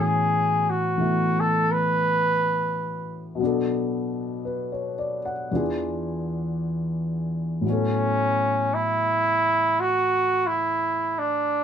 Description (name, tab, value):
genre	jazz ballad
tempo	57 BPM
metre	4/4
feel	swing 67% on 8ths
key	A major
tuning	A4 = 440 Hz
part	mellow trumpet	melody	0.0-11.6 s	C#4 to B4	-22 LUFS	right 1 dB	none
part	dark upright piano	accompaniment	0.0-11.6 s	E2 to F#5	-26 LUFS	left 1 dB	none
room	moderate studio ambience, RT60 0.5 s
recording	band playing live in one room, nothing above 10.5 kHz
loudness	-22 LUFS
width	side -8 dB against mid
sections	0.0-7.6 A section; 7.6-11.6 B section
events	trumpet solo 0.0-7.6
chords	0.0 A69; 3.4 Bm7; 5.5 E7b9; 7.6 A69